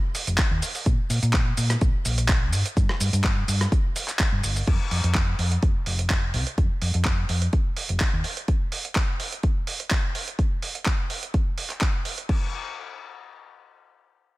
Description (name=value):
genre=filtered disco house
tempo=126 BPM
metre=4/4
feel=swing 53% on 16ths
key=unclear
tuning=A4 = 440 Hz
part: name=dusty soul sampler-style drum kit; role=drums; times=0.1-12.4 s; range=crash cymbal, handclaps, hi-hat, rim click, shaker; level=-28 LUFS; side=right 1 dB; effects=overdrive, studio reverb, sidechain pumping on hats, sidechain pumping on perc, sidechain pumping on cymbals
part: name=hollow-body short-scale fingered electric bass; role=bass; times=0.3-8.2 s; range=F1 to Bb2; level=-24 LUFS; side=equal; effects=sidechain pumping, low-pass filter
part: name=electronic kick drum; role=drums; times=0.4-12.4 s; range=none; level=-23 LUFS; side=equal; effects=studio reverb
room=little or no reverb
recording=none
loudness=-22 LUFS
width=side -19 dB against mid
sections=0.0-4.7 A section; 4.7-12.3 B section; 12.3-14.4 C section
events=drop 0.0-4.7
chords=none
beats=0.39 | 0.86 1.34 1.82 2.29 | 2.77 3.24 3.72 4.20 | 4.67 5.15 5.62 6.10 | 6.58 7.05 7.53 8.01 | 8.48 8.96 9.44 9.91 | 10.39 10.86 11.34 11.82 | 12.29